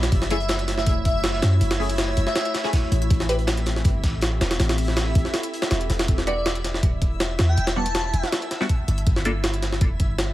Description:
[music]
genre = drum and bass, jungle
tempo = 161 BPM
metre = 4/4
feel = straight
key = E minor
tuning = A4 = 441 Hz
[part]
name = warm 808-style bass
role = bass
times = 0.0-10.3 s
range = D1 to F#2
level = -23 LUFS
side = equal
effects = none
[part]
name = jungle sampler-style drum kit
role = drums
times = 0.0-10.3 s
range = hi-hat, kick drum, snare drum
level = -23 LUFS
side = equal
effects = none
[part]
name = backwards swelling texture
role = texture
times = 0.0-10.3 s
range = E4 to E5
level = -34 LUFS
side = right 1 dB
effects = built-in reverb
[part]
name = crunchy breakbeat drum kit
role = drums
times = 0.1-6.1 s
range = hi-hat, snare drum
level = -37 LUFS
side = right 2 dB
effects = high-pass filter on hats, high-pass filter on snare, high-pass filter on room
[part]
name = airy dreamy lead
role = melody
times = 0.3-2.5, 6.3-8.3 s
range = D5 to A5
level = -29 LUFS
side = equal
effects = chorus, dub echo
[part]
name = filtered dub chord stab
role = stabs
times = 0.3-3.4, 6.3-9.3 s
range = G3 to B4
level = -29 LUFS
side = left 1 dB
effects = phaser, wide subtle chorus, cassette tape, dub echo
[sound]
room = digital ambience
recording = vinyl crackle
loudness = -20 LUFS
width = side -15 dB against mid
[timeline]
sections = 0.0-6.1 A section; 6.1-10.3 A section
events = drop 0.0-6.1, 6.1-10.3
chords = 0.1 F#m7; 3.1 Am7; 6.1 Em7; 9.1 G7(no3)

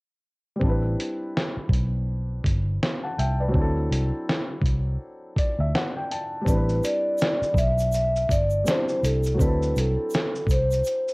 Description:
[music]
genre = lo-fi hip hop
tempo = 82 BPM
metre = 4/4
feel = swing 59% on 16ths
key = unclear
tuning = A4 = 440 Hz
[part]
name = felt-muted upright piano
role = accompaniment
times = 0.6-11.1 s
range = F#3 to A5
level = -30 LUFS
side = left 1 dB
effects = low-pass filter, cassette tape
[part]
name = vintage muted fingered electric bass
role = bass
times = 0.6-10.8 s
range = G1 to D2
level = -24 LUFS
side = equal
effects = none
[part]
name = dusty soul sampler-style drum kit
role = drums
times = 0.6-11.1 s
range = hi-hat, kick drum, shaker, snare drum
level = -25 LUFS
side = equal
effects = vintage 12-bit sampler grit, cassette tape
[part]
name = vibraphone with soft mallets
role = melody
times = 6.5-11.1 s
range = A4 to E5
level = -24 LUFS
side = equal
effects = low-pass filter, cassette tape
[part]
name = tube shaker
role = percussion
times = 6.5-11.0 s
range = none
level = -42 LUFS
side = right 4 dB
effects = none
[sound]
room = little or no reverb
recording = home recording on cassette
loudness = -22 LUFS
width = side -28 dB against mid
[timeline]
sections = 0.6-6.5 A section; 6.5-11.1 B section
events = felt piano fill 5.0-6.5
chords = 0.6 Am11; 3.5 D9; 6.5 Am11 (rootless); 9.4 D9

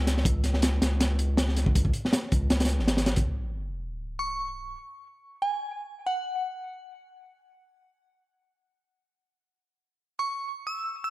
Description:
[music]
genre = drum and bass, jungle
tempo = 160 BPM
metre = 4/4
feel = swing 55% on 16ths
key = C# minor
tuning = A4 = 440 Hz
[part]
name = saturated sub bass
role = bass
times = 0.0-3.2 s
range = G#1 to C#2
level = -26 LUFS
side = equal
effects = none
[part]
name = crunchy breakbeat drum kit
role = drums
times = 0.1-3.2 s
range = hi-hat, kick drum, snare drum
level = -25 LUFS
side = equal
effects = none
[part]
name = sub drop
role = sound effects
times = 3.3-4.8 s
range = none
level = -36 LUFS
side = equal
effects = none
[part]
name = glassy synth bell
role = melody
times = 4.2-6.4, 10.2-11.1 s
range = F#5 to E6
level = -31 LUFS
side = right 1 dB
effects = chorus, phaser, dub echo
[sound]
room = small room ambience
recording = none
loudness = -25 LUFS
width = side -18 dB against mid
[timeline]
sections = 0.0-3.3 A section; 3.3-11.1 B section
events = drop 0.0-3.3; impact 3.3-4.8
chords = 0.0 C#5; 3.3 N.C.

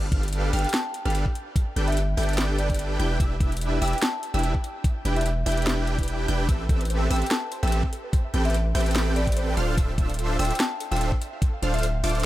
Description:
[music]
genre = future bass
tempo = 146 BPM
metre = 4/4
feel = swing 55% on 16ths, half-time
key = A minor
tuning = A4 = 440 Hz
[part]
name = wide unison pluck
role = arpeggios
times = 0.0-12.3 s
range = D6 to G6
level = -39 LUFS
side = right 1 dB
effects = analog chorus, sidechain pumping
[part]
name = supersaw chords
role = riff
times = 0.0-12.3 s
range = C4 to G5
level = -29 LUFS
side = right 1 dB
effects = sidechain pumping
[part]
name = long sustained 808-style bass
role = bass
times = 0.0-12.3 s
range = D1 to A1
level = -25 LUFS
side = equal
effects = sidechain pumping
[part]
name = electronic kick drum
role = drums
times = 0.1-11.5 s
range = none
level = -24 LUFS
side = equal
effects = none
[part]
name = trap drum kit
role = drums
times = 0.1-12.3 s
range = hi-hat, snare drum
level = -30 LUFS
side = left 1 dB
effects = none
[part]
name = marimba with medium mallets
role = melody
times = 0.5-12.3 s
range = D5 to A5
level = -33 LUFS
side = left 1 dB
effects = sidechain pumping, dub echo
[part]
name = soft round pluck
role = arpeggios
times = 6.5-12.2 s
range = G4 to F5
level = -39 LUFS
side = right 1 dB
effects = ensemble chorus, sidechain pumping, digital delay
[sound]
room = little or no reverb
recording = none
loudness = -22 LUFS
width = side -15 dB against mid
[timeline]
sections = 0.0-12.3 A section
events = none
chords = 0.0 G9; 3.0 Em7; 6.5 Am9; 9.6 Dm9

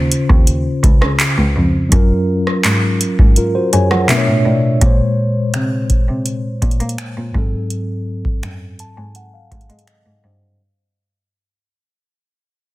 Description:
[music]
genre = contemporary R&B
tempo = 83 BPM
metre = 4/4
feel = straight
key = unclear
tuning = A4 = 440 Hz
[part]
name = mellow tine electric piano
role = accompaniment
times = 0.0-10.6 s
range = Ab2 to A5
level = -18 LUFS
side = left 1 dB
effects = slow stereo tremolo, low-pass filter
[part]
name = warm cello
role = bass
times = 0.0-10.6 s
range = Db2 to Bb3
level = -19 LUFS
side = equal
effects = none
[part]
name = booming analog drum machine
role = drums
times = 0.1-10.0 s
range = finger snaps, handclaps, hi-hat, kick drum, rim click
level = -14 LUFS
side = equal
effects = overdrive
[sound]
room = little or no reverb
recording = dense, heavily limited modern master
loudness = -13 LUFS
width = side -17 dB against mid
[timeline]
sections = 0.0-4.8 A section; 4.8-10.6 B section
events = kick muted 3.4-4.8; tine electric piano fill 3.4-4.8, 8.4-10.6; fade-out 4.8-10.6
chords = 0.0 Dbmaj7; 1.9 Gbmaj7; 4.1 Bm9; 4.8 Bbm9; 7.3 Ab7b9

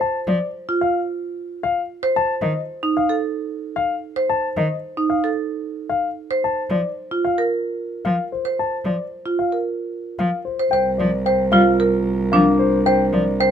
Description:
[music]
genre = classical, minimalist pattern music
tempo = 112 BPM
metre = 4/4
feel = straight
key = unclear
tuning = A4 = 440 Hz
[part]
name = dark concert grand piano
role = melody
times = 0.0-13.5 s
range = C5 to A5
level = -22 LUFS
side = left 6 dB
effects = none
[part]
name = marimba with medium hard mallets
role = arpeggios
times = 0.0-13.5 s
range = D4 to C5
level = -21 LUFS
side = right 2 dB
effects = none
[part]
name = dark cello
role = accompaniment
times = 0.3-13.2 s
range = Eb3 to G3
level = -21 LUFS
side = equal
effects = none
[part]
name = warm French horn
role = second line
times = 10.7-13.5 s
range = Bb4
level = -27 LUFS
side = right 4 dB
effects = none
[part]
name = rich cello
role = bass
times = 10.7-13.5 s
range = C2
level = -22 LUFS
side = right 3 dB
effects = none
[sound]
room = little or no reverb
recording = close, detailed microphones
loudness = -18 LUFS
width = side -8 dB against mid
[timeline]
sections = 0.0-10.7 A section; 10.7-13.5 B section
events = none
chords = 0.0 F5; 2.2 F7 (rootless); 6.4 Bb5; 10.7 C7sus4

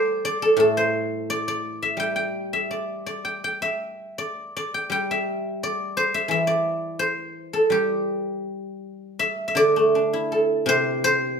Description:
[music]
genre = chinese traditional, Chinese solo plucked strings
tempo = 83 BPM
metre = 2/4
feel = rubato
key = G zhi mode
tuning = A4 = 440 Hz
[part]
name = guzheng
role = solo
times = 0.0-11.4 s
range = A2 to G5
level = -21 LUFS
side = equal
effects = none
[sound]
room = moderate large studio reverb, RT60 1.1 s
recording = band playing live in one room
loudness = -21 LUFS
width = side -6 dB against mid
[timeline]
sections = 0.0-9.2 A section; 9.2-11.4 B section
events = none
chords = none

